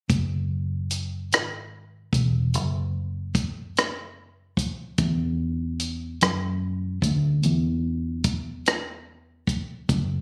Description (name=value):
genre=slow six-eight R&B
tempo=49 BPM (dotted quarters)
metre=6/8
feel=straight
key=unclear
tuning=A4 = 440 Hz
part: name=vintage muted fingered electric bass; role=bass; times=0.1-10.2 s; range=E1 to F#2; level=-27 LUFS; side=equal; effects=none
part: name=compact cocktail drum kit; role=drums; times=0.1-10.1 s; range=hi-hat, kick drum, rim click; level=-26 LUFS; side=equal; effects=none
room=light reverb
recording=recorded on a phone in the room, studio reverb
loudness=-26 LUFS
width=mono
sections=0.1-10.2 A section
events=none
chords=none